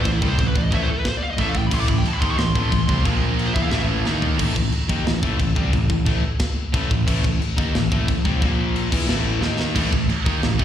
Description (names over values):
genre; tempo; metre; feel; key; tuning
heavy metal; 179 BPM; 4/4; straight; unclear; A4 = 440 Hz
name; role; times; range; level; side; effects
high-gain lead guitar; melody; 0.0-3.8 s; E4 to D6; -27 LUFS; equal; distortion, slapback echo, digital delay
distorted electric guitar; riff; 0.0-10.6 s; A2 to E4; -28 LUFS; left 8 dB; distortion, slapback echo
distorted electric guitar; riff; 0.0-10.6 s; A2 to E4; -26 LUFS; right 1 dB; distortion, slapback echo
scooped high-gain guitar; riff; 0.0-4.4, 9.8-10.6 s; A2 to E4; -26 LUFS; right 9 dB; distortion, slapback echo
fuzz picked electric bass; bass; 0.0-10.6 s; A1 to E2; -24 LUFS; equal; overdrive
tight metal drum kit; drums; 0.1-10.6 s; china cymbal, crash cymbal, kick drum, snare drum, toms; -22 LUFS; equal; none
room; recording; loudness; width
studio reverb; live gig heard through the venue's PA, recital hall reverb; -18 LUFS; side -10 dB against mid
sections
0.0-4.4 A section; 4.4-10.6 B section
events
lead electric guitar solo 0.0-4.4; drum fill 4.1-4.4, 9.4-9.8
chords
0.0 Am; 3.1 Bb5; 3.6 A5; 4.1 D#5; 4.4 Am; 8.4 Bb5; 8.9 A5; 9.4 D#5; 9.8 A5